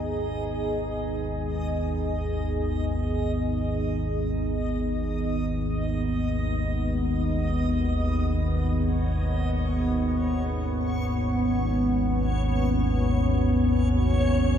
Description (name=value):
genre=dark ambient drone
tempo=free time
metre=none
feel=none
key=unclear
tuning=A4 = 440 Hz
part: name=deep dark ambient pad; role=sustained chords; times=0.0-14.6 s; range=B3 to D#5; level=-27 LUFS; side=equal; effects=chorus, built-in reverb
part: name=analog drone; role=drone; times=0.0-14.6 s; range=G#1 to D#2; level=-26 LUFS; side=equal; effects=wide subtle chorus
part: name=backwards swelling texture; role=texture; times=0.0-14.6 s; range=C#5 to D#5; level=-37 LUFS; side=equal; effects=built-in reverb
room=wet echo chamber reverb, RT60 2.2 s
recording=none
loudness=-23 LUFS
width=side -9 dB against mid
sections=0.0-14.6 A section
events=fade-in on synth drone 0.0-14.6; fade-in on synth texture 0.0-14.6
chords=0.0 G#m